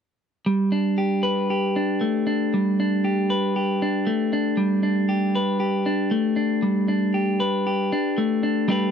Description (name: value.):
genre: rock.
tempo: 117 BPM.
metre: 4/4.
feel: straight.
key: G major.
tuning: A4 = 440 Hz.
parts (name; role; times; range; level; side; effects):
clean electric guitar; solo; 0.5-8.9 s; G3 to B4; -20 LUFS; equal; none.
room: little or no reverb.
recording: dry, close 1970s-style studio recording.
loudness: -20 LUFS.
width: side -7 dB against mid.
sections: 0.5-8.7 A section.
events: none.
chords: 0.5 Gadd9.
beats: | 0.47 0.98 1.50 2.01 | 2.52 3.04 3.55 4.06 | 4.58 5.09 5.60 6.12 | 6.63 7.15 7.66 8.17 | 8.69.